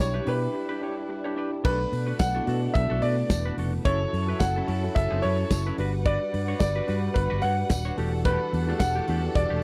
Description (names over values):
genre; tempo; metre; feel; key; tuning
disco; 109 BPM; 4/4; swing 56% on 16ths; B minor; A4 = 440 Hz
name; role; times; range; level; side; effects
clear baby grand piano; melody; 0.0-9.6 s; B4 to F#5; -31 LUFS; equal; none
semi-hollow electric guitar; accompaniment; 0.0-9.6 s; A3 to C#5; -38 LUFS; equal; none
tine electric piano; accompaniment; 0.0-9.6 s; B2 to B4; -35 LUFS; equal; none
warm studio string section; sustained chords; 0.0-9.6 s; E3 to F#5; -39 LUFS; equal; none
fingered electric bass; bass; 0.0-9.6 s; D#1 to B2; -30 LUFS; equal; none
modern studio drum kit; drums; 0.0-9.5 s; crash cymbal, hi-hat, kick drum, snare drum; -27 LUFS; equal; none
tambourine; percussion; 2.2-8.9 s; none; -44 LUFS; equal; none
room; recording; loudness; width
little or no reverb; dry, close 1970s-style studio recording; -26 LUFS; mono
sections
0.0-1.7 A section; 1.7-9.6 B section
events
break 0.5-1.7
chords
0.0 Em7/B; 1.7 Bm7; 3.9 F#m7; 5.8 Gmaj7; 8.0 Em11